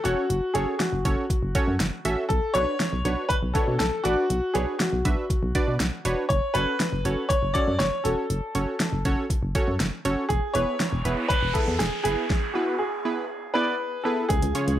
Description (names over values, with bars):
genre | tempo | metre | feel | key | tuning
synth-pop | 120 BPM | 4/4 | straight | unclear | A4 = 441 Hz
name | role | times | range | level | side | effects
warm baby grand piano | melody | 0.0-14.8 s | F#4 to D5 | -26 LUFS | left 1 dB | analog delay
warm analog keys | accompaniment | 0.1-14.8 s | B3 to E5 | -29 LUFS | right 2 dB | chorus
solid FM bass | bass | 0.1-14.8 s | E1 to B2 | -27 LUFS | equal | none
pop drum kit | drums | 0.1-14.8 s | hi-hat, kick drum, snare drum | -26 LUFS | equal | overdrive
noise sweep | sound effects | 10.7-13.3 s | none | -34 LUFS | right 2 dB | none
ensemble organ-string | sustained chords | 14.3-14.8 s | C#3 to E#4 | -30 LUFS | equal | ensemble chorus
room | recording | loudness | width
light reverb, digital ambience | none | -22 LUFS | side -12 dB against mid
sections
0.0-14.3 A section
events
noise sweep 10.7-14.3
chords
0.0 F#m; 2.3 Bmadd9; 6.3 F#m; 10.3 E